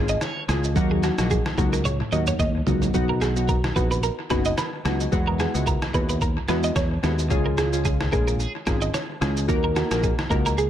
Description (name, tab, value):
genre	afrobeats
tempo	110 BPM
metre	4/4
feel	swing 55% on 16ths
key	Eb minor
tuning	A4 = 440 Hz
part	glassy digital keys	accompaniment	0.0-10.5 s	Gb3 to Bb4	-26 LUFS	left 1 dB	chorus
part	electric guitar at the edge of break-up	riff	0.0-10.7 s	Gb4 to Eb5	-29 LUFS	right 4 dB	analog chorus, tape echo
part	fingered electric bass	bass	0.0-10.7 s	F#1 to E2	-25 LUFS	equal	none
part	trip hop sampler-style drum kit	drums	0.1-10.7 s	kick drum, rim click, shaker, toms	-26 LUFS	equal	overdrive, tape echo
room	light reverb, digital ambience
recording	echo-heavy mix, lossy compression artefacts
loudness	-20 LUFS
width	side -10 dB against mid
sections	0.0-10.7 A section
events	drum fill 1.9-2.9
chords	0.0 Db; 0.8 Ebm; 2.9 B; 5.1 Eadd9; 7.3 Db; 9.5 Ebm